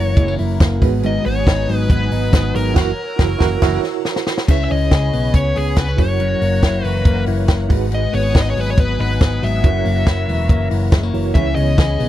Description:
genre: jangly indie pop.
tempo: 140 BPM.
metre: 4/4.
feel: straight.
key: unclear.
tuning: A4 = 440 Hz.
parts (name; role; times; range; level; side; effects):
dark smooth lead guitar; melody; 0.0-12.1 s; G#4 to E5; -23 LUFS; left 2 dB; overdrive.
fingerpicked steel-string acoustic guitar; accompaniment; 0.0-3.8, 11.3-12.1 s; F#2 to G#4; -25 LUFS; right 7 dB; none.
reed electric piano; accompaniment; 0.0-12.1 s; D#4 to C#5; -26 LUFS; right 20 dB; fast tremolo.
phased analog pad; sustained chords; 0.0-12.1 s; B4 to E6; -32 LUFS; right 1 dB; phaser, chorus.
direct-recorded clean electric guitar; arpeggios; 0.0-12.1 s; F#2 to G#4; -22 LUFS; left 6 dB; none.
picked electric bass; bass; 0.0-12.1 s; E1 to C#2; -20 LUFS; equal; none.
compact cocktail drum kit; drums; 0.2-12.1 s; crash cymbal, hi-hat, kick drum, snare drum; -14 LUFS; equal; none.
room: little or no reverb.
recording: dry, close 1970s-style studio recording.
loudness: -14 LUFS.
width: side -13 dB against mid.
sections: 0.0-4.5 A section; 4.5-12.1 A section.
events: band accent 2.8-4.5; drum fill 3.6-4.5.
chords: 0.0 F#7; 0.8 G#m7; 2.8 F#7; 4.5 C#m7; 6.0 F#7; 7.7 G#m7; 9.6 F#7; 11.4 C#m7.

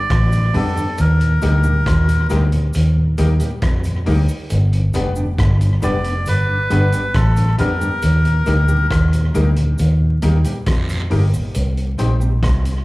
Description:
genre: roots reggae.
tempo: 68 BPM.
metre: 4/4.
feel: straight.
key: unclear.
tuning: A4 = 444 Hz.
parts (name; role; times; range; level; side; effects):
melodica; melody; 0.0-8.9 s; A4 to D5; -22 LUFS; equal; tape echo, slapback echo.
vintage muted fingered electric bass; bass; 0.1-12.8 s; F1 to F2; -15 LUFS; equal; none.
vintage drum kit; drums; 0.1-12.8 s; hi-hat, kick drum, rim click; -24 LUFS; equal; none.
mellow tonewheel organ; accompaniment; 0.3-12.7 s; Eb2 to Eb4; -28 LUFS; left 1 dB; none.
cabasa and guiro; percussion; 0.3-12.8 s; none; -37 LUFS; right 3 dB; none.
mellow electric guitar; accompaniment; 0.5-12.3 s; G3 to G4; -29 LUFS; right 2 dB; tape echo, slapback echo.
clear upright piano; stabs; 0.5-12.1 s; Bb3 to C5; -28 LUFS; left 4 dB; slapback echo.
room: small room ambience.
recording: live gig heard through the venue's PA, club reverb, vinyl crackle.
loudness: -14 LUFS.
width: side -20 dB against mid.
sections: 0.0-11.5 A section; 11.5-12.8 B section.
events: none.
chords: 0.0 G; 1.0 Eb; 4.5 G; 8.0 Eb; 11.5 Cm.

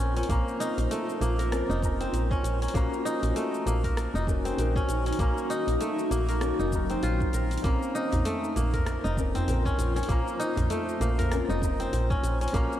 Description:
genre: organic downtempo.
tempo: 98 BPM.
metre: 4/4.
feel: swing 58% on 16ths.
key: Bb minor.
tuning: A4 = 440 Hz.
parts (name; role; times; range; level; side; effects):
felt-muted upright piano; accompaniment; 0.0-12.8 s; Gb3 to Bb5; -34 LUFS; left 2 dB; wide subtle chorus, sidechain pumping, analog delay.
granular cloud pad; sustained chords; 0.0-12.8 s; Eb4 to Db6; -34 LUFS; equal; built-in reverb, sidechain pumping.
kora; arpeggios; 0.0-12.8 s; A3 to Bb4; -31 LUFS; equal; analog delay.
woody FM bass; bass; 0.0-12.7 s; F1 to Bb1; -28 LUFS; equal; none.
afro-pop drum kit; drums; 0.2-12.8 s; cabasa, hi-hat, rim click; -41 LUFS; left 2 dB; none.
electronic kick drum; drums; 0.3-12.7 s; none; -30 LUFS; equal; none.
djembe; percussion; 8.1-12.2 s; none; -35 LUFS; left 1 dB; none.
room: moderate lush hall reverb, RT60 2.5 s.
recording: dreamy mix soaked in reverb.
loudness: -25 LUFS.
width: side -12 dB against mid.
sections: 0.0-12.8 A section.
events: none.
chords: 0.0 Bbmadd9; 2.7 Ebm9; 7.6 Bbmadd9.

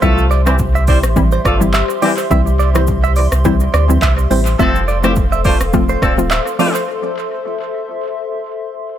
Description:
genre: afrobeats.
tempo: 105 BPM.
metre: 4/4.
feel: swing 55% on 16ths.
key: C major.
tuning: A4 = 441 Hz.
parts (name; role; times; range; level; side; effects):
clear horn section; second line; 0.0-6.7 s; E3 to C5; -21 LUFS; left 1 dB; none.
hollow square pluck; accompaniment; 0.0-6.8 s; E3 to F4; -19 LUFS; left 2 dB; chorus, tape echo.
hollow soft pad; sustained chords; 0.0-9.0 s; G4 to C6; -22 LUFS; left 3 dB; chorus, sidechain pumping.
direct-recorded clean electric guitar; riff; 0.0-6.8 s; C5 to E5; -21 LUFS; right 6 dB; wide subtle chorus, tape echo.
warm sub bass; bass; 0.0-6.4 s; D1 to D2; -15 LUFS; equal; none.
deep house drum kit; drums; 0.0-6.9 s; handclaps, hi-hat, kick drum, rim click, shaker; -18 LUFS; equal; tape echo.
room: little or no reverb.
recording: echo-heavy mix.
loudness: -12 LUFS.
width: side -10 dB against mid.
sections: 0.0-9.0 A section.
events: break 6.9-9.0.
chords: 0.0 C; 4.6 F.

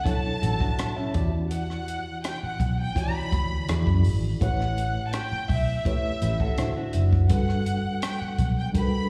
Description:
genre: lush 1970s-style soul.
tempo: 83 BPM.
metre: 4/4.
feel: straight.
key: unclear.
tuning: A4 = 440 Hz.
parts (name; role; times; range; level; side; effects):
warm studio violin section; melody; 0.0-9.1 s; E5 to B5; -34 LUFS; equal; slapback echo, tape echo.
reed electric piano; accompaniment; 0.0-9.1 s; B2 to D5; -33 LUFS; equal; fast tremolo, slapback echo.
compact cocktail drum kit; drums; 0.1-8.9 s; hi-hat, kick drum, rim click; -30 LUFS; equal; none.
electric guitar through a small old amp; riff; 0.4-1.3, 6.2-7.3 s; C#4 to A4; -36 LUFS; equal; subtle chorus, slapback echo.
vintage muted fingered electric bass; bass; 0.4-8.7 s; F#1 to F#2; -28 LUFS; equal; none.
room: light reverb.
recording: live gig heard through the venue's PA, recital hall reverb, small room ambience.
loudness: -26 LUFS.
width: mono.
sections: 0.0-9.1 A section.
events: none.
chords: 0.0 Bm11; 1.1 Em9; 3.7 E7; 4.4 A7; 6.6 D7; 7.3 Gmaj7.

